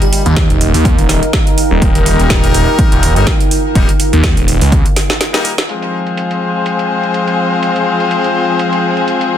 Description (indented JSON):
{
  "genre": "bass house",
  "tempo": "124 BPM",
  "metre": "4/4",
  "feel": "swing 55% on 16ths",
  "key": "F minor",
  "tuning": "A4 = 443 Hz",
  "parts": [
    { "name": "garage drum kit", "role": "drums", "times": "0.0-9.3 s", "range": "hi-hat, snare drum", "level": "-18 LUFS", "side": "right 1 dB", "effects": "overdrive, low-pass filter on hats, studio reverb, low-pass filter on snare" },
    { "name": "deep dark ambient pad", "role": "texture", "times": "0.0-9.4 s", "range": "Eb4 to Ab5", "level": "-20 LUFS", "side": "right 2 dB", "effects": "chorus, built-in reverb, sidechain pumping" },
    { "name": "phased detuned saw bass", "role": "bass", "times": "0.3-4.8 s", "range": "Eb1 to Eb2", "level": "-12 LUFS", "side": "equal", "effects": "phaser, overdrive, sidechain pumping" },
    { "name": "electronic kick drum", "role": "drums", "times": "0.4-4.8 s", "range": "none", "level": "-13 LUFS", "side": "equal", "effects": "overdrive, studio reverb" },
    { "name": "brilliant horn section", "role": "stabs", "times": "1.8-9.4 s", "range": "G3 to C5", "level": "-16 LUFS", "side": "left 4 dB", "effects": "sidechain pumping, low-pass filter, tape echo" },
    { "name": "rich studio string section", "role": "sustained chords", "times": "5.7-9.4 s", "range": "F3 to Ab4", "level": "-18 LUFS", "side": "left 1 dB", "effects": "sidechain pumping, low-pass filter" }
  ],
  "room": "light reverb, digital ambience",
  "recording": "dense, heavily limited modern master",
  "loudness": "-10 LUFS",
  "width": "side -10 dB against mid",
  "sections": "0.0-5.7 A section; 5.7-9.4 B section",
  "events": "drum fill 5.0-5.7; break 5.2-5.7; filter sweep on string section 5.7-9.4",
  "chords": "0.0 Eb; 5.7 Fm"
}